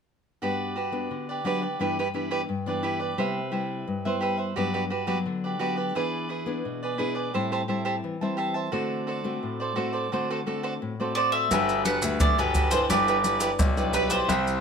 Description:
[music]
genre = samba and choro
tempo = 86 BPM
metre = 4/4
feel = straight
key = G major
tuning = A4 = 440 Hz
[part]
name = cavaquinho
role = accompaniment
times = 0.4-14.6 s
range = E4 to A5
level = -29 LUFS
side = right 4 dB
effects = none
[part]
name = nylon-string guitar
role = accompaniment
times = 0.4-14.6 s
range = G2 to B4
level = -30 LUFS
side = left 4 dB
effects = none
[part]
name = bowl-back mandolin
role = melody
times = 11.2-14.6 s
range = B4 to F#5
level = -25 LUFS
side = right 1 dB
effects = none
[part]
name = bright concert grand piano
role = bass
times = 11.5-14.6 s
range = G1 to D2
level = -28 LUFS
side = left 3 dB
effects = none
[part]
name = maracas, surdo and pandeiro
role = percussion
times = 11.5-14.6 s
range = none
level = -26 LUFS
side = equal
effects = none
[sound]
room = moderate studio reverb, RT60 0.7 s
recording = none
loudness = -24 LUFS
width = side -6 dB against mid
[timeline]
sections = 0.4-11.5 A section; 11.5-14.6 B section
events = none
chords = 0.4 Gmaj7; 1.8 Em7/G; 3.2 Cmaj7; 4.6 Gmaj7; 6.0 E7; 7.3 Am7; 8.7 D7; 11.5 Gmaj7; 12.9 Em7/G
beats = | 0.41 1.11 1.80 2.49 | 3.19 3.88 4.57 5.27 | 5.96 6.65 7.35 8.04 | 8.73 9.43 10.12 10.81 | 11.51 12.20 12.90 13.59 | 14.28

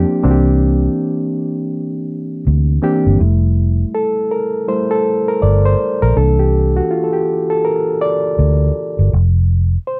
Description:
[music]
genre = R&B, neo-soul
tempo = 81 BPM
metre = 4/4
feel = swing 61% on 16ths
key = F major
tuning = A4 = 439 Hz
[part]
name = reed electric piano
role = accompaniment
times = 0.0-10.0 s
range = E3 to D5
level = -18 LUFS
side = equal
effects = overdrive
[part]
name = vintage muted fingered electric bass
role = bass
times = 0.0-9.8 s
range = F1 to D2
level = -15 LUFS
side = equal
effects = none
[sound]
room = light reverb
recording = none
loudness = -16 LUFS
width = mono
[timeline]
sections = 0.0-3.2 A section; 3.2-10.0 B section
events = reed electric piano solo 3.2-10.0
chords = 0.2 C9; 3.2 Fmaj9; 6.2 C9; 9.1 F5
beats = | 0.23 0.97 1.71 2.45 | 3.19 3.93 4.67 5.41 | 6.15 6.89 7.63 8.37 | 9.11 9.86

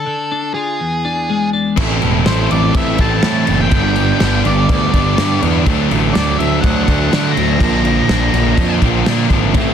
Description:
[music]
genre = quiet-loud alternative rock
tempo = 124 BPM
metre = 4/4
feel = straight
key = A dorian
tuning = A4 = 439 Hz
[part]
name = octave-fuzz lead guitar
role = melody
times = 0.0-8.8 s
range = G#4 to Bb5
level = -20 LUFS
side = equal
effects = distortion, slapback echo
[part]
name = twelve-string electric guitar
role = arpeggios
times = 0.0-1.8 s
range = E2 to F4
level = -19 LUFS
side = left 5 dB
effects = wide subtle chorus, slapback echo
[part]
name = high-gain distorted guitar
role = riff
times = 1.8-9.7 s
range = G2 to E4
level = -20 LUFS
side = left 13 dB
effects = distortion
[part]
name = thick fuzz guitar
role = riff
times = 1.8-9.7 s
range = G2 to A4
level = -18 LUFS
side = right 13 dB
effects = distortion
[part]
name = fuzz picked electric bass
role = bass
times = 1.8-9.7 s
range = E1 to D3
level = -17 LUFS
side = equal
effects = overdrive
[part]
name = loose indie drum kit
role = drums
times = 1.8-9.7 s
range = crash cymbal, kick drum, snare drum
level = -18 LUFS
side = equal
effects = soft clipping on snare
[part]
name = thick fuzz guitar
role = riff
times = 9.5-9.7 s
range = A2 to E4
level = -17 LUFS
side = equal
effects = distortion
[sound]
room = little or no reverb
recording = dense, heavily limited modern master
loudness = -12 LUFS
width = side -8 dB against mid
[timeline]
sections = 0.0-1.8 A section; 1.8-9.7 B section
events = break 0.0-1.8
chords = 0.0 Dm; 0.8 E7; 1.8 Am; 3.7 G; 5.7 D; 7.6 Bb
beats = 0.31 0.80 1.29 | 1.77 2.26 2.75 3.23 | 3.72 4.21 4.69 5.18 | 5.66 6.15 6.63 7.12 | 7.60 8.09 8.58 9.06 | 9.55

